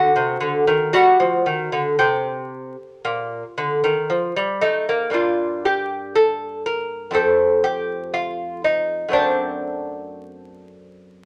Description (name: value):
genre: classical, baroque-style dance for lute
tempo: 56-61 BPM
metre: 4/4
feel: rubato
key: G minor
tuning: A4 = 439 Hz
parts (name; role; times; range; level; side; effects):
- lute; solo; 0.0-11.3 s; F2 to Bb4; -20 LUFS; equal; none
room: moderate studio reverb, RT60 0.8 s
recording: vinyl crackle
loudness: -20 LUFS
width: mono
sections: 0.0-5.1 A section; 5.1-11.3 B section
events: none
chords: 0.0 D; 0.9 Gm; 7.1 F; 9.1 D7/F#